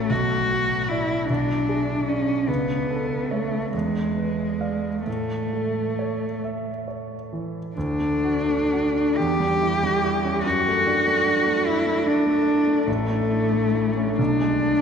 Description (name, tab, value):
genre	classical, romantic duo for cello and grand piano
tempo	41-52 BPM (dotted quarters)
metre	6/8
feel	rubato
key	A major, D major from 7.8 s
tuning	A4 = 443 Hz
part	rich cello	melody	0.0-14.8 s	G#3 to G4	-22 LUFS	left 1 dB	none
part	clear concert grand piano	accompaniment	0.0-14.8 s	A1 to F5	-25 LUFS	right 2 dB	none
room	wet cathedral reverb, RT60 5.6 s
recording	recorded in a church or concert hall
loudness	-20 LUFS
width	side -7 dB against mid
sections	0.0-7.8 A section; 7.8-14.8 B section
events	none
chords	0.1 Bm; 1.3 G#dim/B; 2.5 A/C#; 3.7 E7b9; 5.1 A; 7.8 D; 9.2 C#dim/E; 10.4 D/F#; 12.9 A; 14.2 G#dim/B